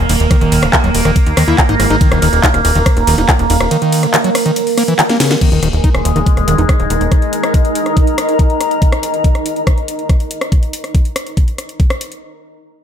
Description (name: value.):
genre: psychedelic trance.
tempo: 141 BPM.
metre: 4/4.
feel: straight.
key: unclear.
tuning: A4 = 440 Hz.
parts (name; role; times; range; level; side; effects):
overtone-sweeping drone; sustained chords; 0.0-8.8 s; Ab3 to Bb3; -17 LUFS; right 2 dB; chorus, built-in reverb, sidechain pumping.
plucky analog bass; bass; 0.0-7.1 s; Eb1 to Eb2; -15 LUFS; equal; none.
techno drum kit; drums; 0.1-12.2 s; crash cymbal, handclaps, hi-hat, ride cymbal, rim click, snare drum; -18 LUFS; left 1 dB; small room ambience.
overdriven acid bass; riff; 0.3-6.7 s; Db3 to Fb4; -17 LUFS; moving between left 5 dB and right 4 dB; distortion, auto-pan, cassette tape, sidechain pumping, tape echo.
electronic kick drum; drums; 0.3-11.9 s; none; -12 LUFS; equal; small room ambience.
granular cloud pad; texture; 6.2-10.5 s; Eb4 to Bb5; -19 LUFS; left 1 dB; built-in reverb, sidechain pumping.
room: light reverb.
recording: none.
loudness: -11 LUFS.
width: side -8 dB against mid.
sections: 0.0-5.4 A section; 5.4-12.2 B section.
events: drop 0.0-5.4; drum fill 5.1-5.4.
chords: 0.0 Eb5.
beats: | 0.31 0.73 1.16 1.58 | 2.01 2.44 2.86 3.29 | 3.71 4.14 4.56 4.99 | 5.41 5.84 6.26 6.69 | 7.12 7.54 7.97 8.39 | 8.82 9.24 9.67 10.10 | 10.52 10.95 11.37 11.80.